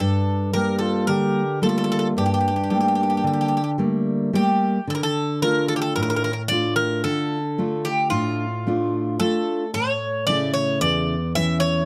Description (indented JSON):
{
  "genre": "greek folk, Greek bouzouki band",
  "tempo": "111 BPM (eighths)",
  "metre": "9/8",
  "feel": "straight",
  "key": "unclear",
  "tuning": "A4 = 441 Hz",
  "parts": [
    { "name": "Greek bouzouki", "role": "melody", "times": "0.0-11.9 s", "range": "F4 to E5", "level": "-26 LUFS", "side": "equal", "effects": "none" },
    { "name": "mellow accordion", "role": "second line", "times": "0.0-3.8 s", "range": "D4 to G4", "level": "-30 LUFS", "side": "equal", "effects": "none" },
    { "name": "fingerpicked steel-string acoustic guitar", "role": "accompaniment", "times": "0.0-11.9 s", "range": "E2 to F4", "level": "-24 LUFS", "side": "equal", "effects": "none" }
  ],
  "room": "light reverb",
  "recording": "dry, close 1970s-style studio recording",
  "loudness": "-22 LUFS",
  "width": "mono",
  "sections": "0.0-4.9 A section; 4.9-11.9 A section",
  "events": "none",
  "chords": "0.0 Gmadd9; 4.9 Dm; 9.7 A"
}